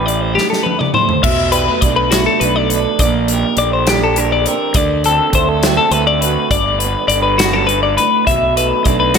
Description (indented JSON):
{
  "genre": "math rock and midwest emo",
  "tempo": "68 BPM (dotted quarters)",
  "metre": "6/8",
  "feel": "straight",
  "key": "unclear",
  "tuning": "A4 = 442 Hz",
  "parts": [
    { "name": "electric guitar through a small old amp", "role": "accompaniment", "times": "0.0-9.2 s", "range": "F#2 to G4", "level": "-19 LUFS", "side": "right 11 dB", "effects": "slapback echo" },
    { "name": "twelve-string electric guitar", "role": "arpeggios", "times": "0.0-9.2 s", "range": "F#4 to E5", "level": "-15 LUFS", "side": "left 5 dB", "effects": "spring reverb, slapback echo" },
    { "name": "fuzz fingered electric bass", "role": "bass", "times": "0.0-9.2 s", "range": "G1 to D2", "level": "-20 LUFS", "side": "right 1 dB", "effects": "overdrive" },
    { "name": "modern studio drum kit", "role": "drums", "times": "0.1-9.2 s", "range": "crash cymbal, hi-hat, kick drum, snare drum, toms", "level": "-18 LUFS", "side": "equal", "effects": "none" }
  ],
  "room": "moderate concert hall reverb, RT60 2.4 s",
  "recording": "big arena sound",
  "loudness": "-12 LUFS",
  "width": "side -6 dB against mid",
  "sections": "0.0-1.2 A section; 1.2-9.2 B section",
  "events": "drum fill 0.4-1.2",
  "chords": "0.0 Am9; 1.2 Bm7; 3.0 Bb69; 4.8 D7; 6.5 Gmaj9; 8.3 Bm7",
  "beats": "0.36 | 1.24 2.12 | 3.00 3.88 | 4.75 5.63 | 6.51 7.39 | 8.27 9.15"
}